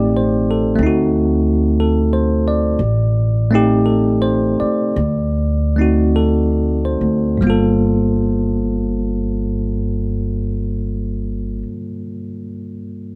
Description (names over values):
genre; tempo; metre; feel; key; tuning
jazz ballad; 46-63 BPM; 4/4; swing 69% on 8ths; G minor; A4 = 444 Hz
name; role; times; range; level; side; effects
bell-like tine electric piano; accompaniment; 0.0-13.2 s; G2 to D5; -20 LUFS; equal; none
upright bass; bass; 0.0-11.6 s; G1 to D2; -21 LUFS; equal; none
room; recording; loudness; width
little or no reverb; none; -17 LUFS; mono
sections
0.0-7.4 A section; 7.4-12.7 B section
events
slowing down 0.0-7.4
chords
0.0 Am7b5; 0.8 D7b9; 2.8 Am7b5; 5.0 D7b9; 7.4 Gm7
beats
0.79 1.77 | 2.79 3.85 4.96 6.15 | 7.42 8.74 10.05 11.37